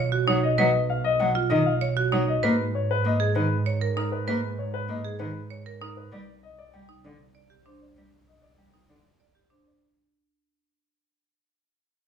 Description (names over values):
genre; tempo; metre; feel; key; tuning
classical, minimalist pattern music; 195 BPM; 6/4; straight; unclear; A4 = 441 Hz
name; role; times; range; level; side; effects
marimba with hard mallets; arpeggios; 0.0-9.7 s; D4 to D5; -28 LUFS; right 7 dB; none
warm studio double bass section; bass; 0.0-9.7 s; B1 to Ab2; -28 LUFS; right 3 dB; none
warm grand piano; melody; 0.3-9.9 s; Bb4 to G5; -27 LUFS; left 6 dB; none
warm cello; accompaniment; 0.3-9.0 s; D3 to Bb3; -28 LUFS; equal; none
room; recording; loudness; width
moderate large studio reverb, RT60 0.8 s; studio reverb; -22 LUFS; side -7 dB against mid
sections
0.0-9.8 A section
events
fade-out 0.0-9.8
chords
0.0 Badd9; 2.4 Abmadd9; 6.1 C5